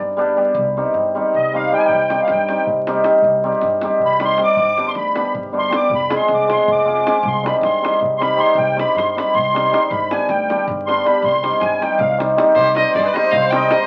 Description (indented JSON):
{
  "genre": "balkan folk, Balkan wedding band",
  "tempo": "315 BPM (eighths)",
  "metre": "7/8",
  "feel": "straight",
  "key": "C harmonic minor",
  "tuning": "A4 = 444 Hz",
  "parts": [
    { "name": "cimbalom", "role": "accompaniment", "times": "0.0-13.9 s", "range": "G3 to C5", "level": "-18 LUFS", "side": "equal", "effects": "none" },
    { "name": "upright bass", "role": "bass", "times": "0.0-13.7 s", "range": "F1 to G2", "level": "-33 LUFS", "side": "equal", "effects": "none" },
    { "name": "musette accordion", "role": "second line", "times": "1.4-13.9 s", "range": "G4 to D6", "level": "-23 LUFS", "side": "equal", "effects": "none" },
    { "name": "davul", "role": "percussion", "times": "1.9-13.8 s", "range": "none", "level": "-32 LUFS", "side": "equal", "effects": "none" },
    { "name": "clear fiddle", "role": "melody", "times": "12.5-13.9 s", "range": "C5 to G5", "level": "-21 LUFS", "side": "equal", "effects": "none" }
  ],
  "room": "wet studio ambience, RT60 0.5 s",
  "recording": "very old 78 rpm record, vinyl crackle",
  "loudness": "-17 LUFS",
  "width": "mono",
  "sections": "0.0-12.6 A section; 12.6-13.9 B section",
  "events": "accordion solo 0.0-12.6",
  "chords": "0.0 G; 0.6 Cm; 4.6 G; 5.9 Fm; 7.2 Cm; 9.9 G; 11.2 Cm",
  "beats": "0.17 0.36 | 0.56 0.75 0.94 1.13 1.32 1.51 1.71 | 1.90 2.09 2.28 2.47 2.66 2.85 3.05 | 3.24 3.43 3.62 3.81 4.00 4.19 4.38 | 4.58 4.77 4.96 5.15 5.34 5.53 5.72 | 5.91 6.10 6.29 6.48 6.67 6.86 7.05 | 7.25 7.43 7.62 7.82 8.01 8.20 8.39 | 8.58 8.77 8.96 9.15 9.34 9.53 9.72 | 9.91 10.10 10.29 10.48 10.67 10.86 11.05 | 11.24 11.43 11.62 11.80 11.99 12.19 12.37 | 12.56 12.75 12.94 13.13 13.32 13.51 13.70"
}